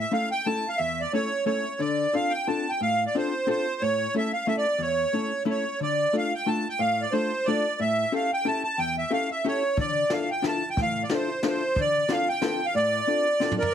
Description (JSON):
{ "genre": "musette waltz", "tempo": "181 BPM", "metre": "3/4", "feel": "straight", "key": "D minor", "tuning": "A4 = 440 Hz", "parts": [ { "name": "accordion", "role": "melody", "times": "0.0-13.7 s", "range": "Bb4 to A5", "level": "-25 LUFS", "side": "right 2 dB", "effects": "light tremolo tuning" }, { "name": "archtop guitar, miked and amplified", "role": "accompaniment", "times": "0.0-13.6 s", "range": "E2 to A4", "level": "-28 LUFS", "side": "left 3 dB", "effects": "none" }, { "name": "jazz brush drum kit", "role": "drums", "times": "9.8-13.7 s", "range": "hi-hat, kick drum, snare drum, toms", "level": "-31 LUFS", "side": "equal", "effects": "none" } ], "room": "moderate studio reverb, RT60 0.6 s", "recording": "heavily compressed radio sound, multiband compression", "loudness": "-23 LUFS", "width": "side -9 dB against mid", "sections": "0.0-13.7 A section", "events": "drum fill 13.4-13.7", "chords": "0.0 A; 1.8 Dm7; 3.8 A; 5.8 Dm; 7.8 A7; 9.8 Dmadd9; 11.8 Dm7" }